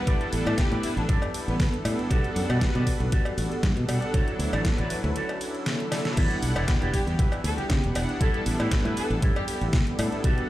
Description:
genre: nu-disco, nu disco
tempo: 118 BPM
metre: 4/4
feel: swing 54% on 16ths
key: unclear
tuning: A4 = 440 Hz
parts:
  - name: dark studio violin section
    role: melody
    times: 0.0-1.7, 6.9-9.6 s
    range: B3 to A4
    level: -35 LUFS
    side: equal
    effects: tape echo
  - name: warm analog pad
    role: accompaniment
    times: 0.0-10.5 s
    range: F#3 to F#5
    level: -31 LUFS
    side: equal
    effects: chorus, sidechain pumping, digital delay
  - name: electric guitar with an envelope filter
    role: riff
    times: 0.1-10.4 s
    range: E4 to E5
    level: -34 LUFS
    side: right 2 dB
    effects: wide subtle chorus, digital delay
  - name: electronic kick drum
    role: drums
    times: 0.1-10.3 s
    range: none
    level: -24 LUFS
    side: equal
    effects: overdrive
  - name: pop drum kit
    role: drums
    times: 0.1-10.5 s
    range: crash cymbal, hi-hat, ride cymbal, snare drum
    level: -32 LUFS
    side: equal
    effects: overdrive
  - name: modern bright fingered electric bass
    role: bass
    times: 0.3-10.3 s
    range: E1 to C#3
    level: -27 LUFS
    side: equal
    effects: sidechain pumping
  - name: cowbell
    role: percussion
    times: 0.5-10.1 s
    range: none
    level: -34 LUFS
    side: left 2 dB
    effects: none
room: little or no reverb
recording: played on a big sound system in a bare room, large studio reverb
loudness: -23 LUFS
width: side -15 dB against mid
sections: 0.0-10.5 A section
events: break 5.2-6.2; drum fill 5.9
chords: 0.1 A7sus4; 2.1 Gmaj7/B; 4.1 Dmaj7; 6.2 Em7; 8.2 A7sus4

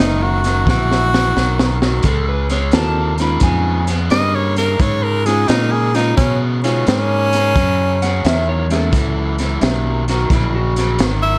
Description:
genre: electric blues shuffle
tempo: 87 BPM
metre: 4/4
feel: swing 67% on 8ths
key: F# mixolydian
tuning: A4 = 439 Hz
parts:
  - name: bright tenor saxophone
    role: melody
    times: 0.0-11.4 s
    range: C#4 to E5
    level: -21 LUFS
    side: equal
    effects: none
  - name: reed electric piano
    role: accompaniment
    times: 0.0-10.0 s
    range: F#3 to E5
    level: -26 LUFS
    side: equal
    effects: none
  - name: raw garage guitar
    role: riff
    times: 0.0-11.4 s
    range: F#2 to B3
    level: -25 LUFS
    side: equal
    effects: overdrive
  - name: fingered electric bass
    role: bass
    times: 0.0-11.4 s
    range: F#1 to B2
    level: -21 LUFS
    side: equal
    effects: none
  - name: crunchy breakbeat drum kit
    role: drums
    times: 0.0-11.2 s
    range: hi-hat, kick drum, snare drum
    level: -21 LUFS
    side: equal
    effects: vintage 12-bit sampler grit
  - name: electric slide guitar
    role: second line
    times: 1.8-11.1 s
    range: E4 to B5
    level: -26 LUFS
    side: equal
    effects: plate reverb
room: light reverb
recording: none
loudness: -16 LUFS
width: mono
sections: 0.0-11.4 A section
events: drum fill 0.7-2.0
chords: 0.0 F#7; 2.0 C#7; 7.6 F#7

